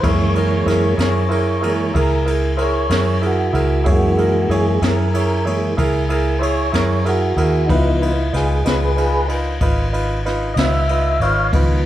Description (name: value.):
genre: slow blues.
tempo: 63 BPM (dotted quarters).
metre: 12/8.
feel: straight.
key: unclear.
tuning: A4 = 440 Hz.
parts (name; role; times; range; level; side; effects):
clear concert grand piano; accompaniment; 0.0-11.8 s; Eb4 to Db5; -21 LUFS; right 3 dB; none.
tonewheel organ; sustained chords; 0.0-11.9 s; Eb3 to F5; -20 LUFS; equal; slow rotary speaker, overdrive.
vintage muted fingered electric bass; bass; 0.0-11.9 s; Ab1 to Gb2; -19 LUFS; equal; none.
jazz brush drum kit; drums; 0.0-11.7 s; kick drum, ride cymbal, snare drum; -23 LUFS; left 1 dB; none.
room: light reverb.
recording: live gig heard through the venue's PA, club reverb.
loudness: -15 LUFS.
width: side -13 dB against mid.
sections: 0.0-11.9 A section.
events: tonewheel organ solo 0.0-11.9.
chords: 0.0 Gb9; 7.7 Db9.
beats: | 0.04 0.99 1.95 2.91 | 3.86 4.82 5.78 6.74 | 7.70 8.65 9.62 10.57 | 11.54.